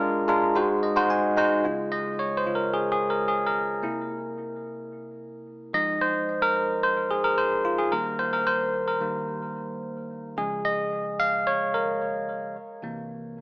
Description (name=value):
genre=pop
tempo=110 BPM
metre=4/4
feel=straight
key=unclear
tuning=A4 = 436 Hz
part: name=bell-like tine electric piano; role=solo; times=0.0-13.4 s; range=C3 to Bb5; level=-23 LUFS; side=equal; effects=phaser, tape echo
room=moderate lush hall reverb, RT60 2.3 s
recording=AM radio sound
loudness=-23 LUFS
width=side -25 dB against mid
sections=0.0-1.6 A section; 1.6-13.4 B section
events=tine electric piano fill 0.6-1.6; tine electric piano solo 1.6-13.4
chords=0.0 Bb7; 0.6 Ab7; 1.6 Db; 3.8 C7; 5.7 Fm7; 7.9 Eb; 10.4 Dbadd9; 12.6 C7